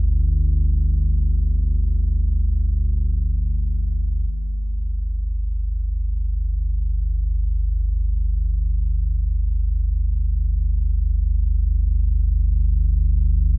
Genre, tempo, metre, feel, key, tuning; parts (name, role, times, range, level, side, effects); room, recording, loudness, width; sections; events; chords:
ambient; free time; A4 = 443 Hz
deep rumbling drone; solo; 0.0-13.6 s; G1 to D2; -19 LUFS; equal; built-in reverb
little or no reverb; dark, warm production; -19 LUFS; side -23 dB against mid
0.0-4.3 A section; 4.3-13.6 B section
0.0 G5